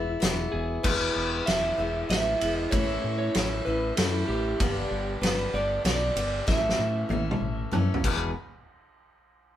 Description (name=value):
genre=folk rock and heartland rock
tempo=96 BPM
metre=3/4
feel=straight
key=unclear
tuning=A4 = 440 Hz
part: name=electric slide guitar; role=melody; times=0.0-7.7 s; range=E4 to E5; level=-30 LUFS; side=right 1 dB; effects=none
part: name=picked steel-string acoustic guitar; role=accompaniment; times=0.0-8.3 s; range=E2 to A4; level=-32 LUFS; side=left 2 dB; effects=none
part: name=fingered electric bass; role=bass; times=0.0-8.3 s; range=E1 to A2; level=-31 LUFS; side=equal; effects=none
part: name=loose indie drum kit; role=drums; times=0.2-8.2 s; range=crash cymbal, hi-hat, kick drum, ride cymbal, snare drum, toms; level=-28 LUFS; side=equal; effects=none
room=light reverb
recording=band playing live in one room, faint mains hum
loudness=-24 LUFS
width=side -11 dB against mid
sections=0.9-8.4 A section; 8.4-9.6 B section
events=drum fill 6.5-8.4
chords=0.0 E; 2.7 A; 4.6 G; 6.5 A; 8.0 E; 8.4 N.C.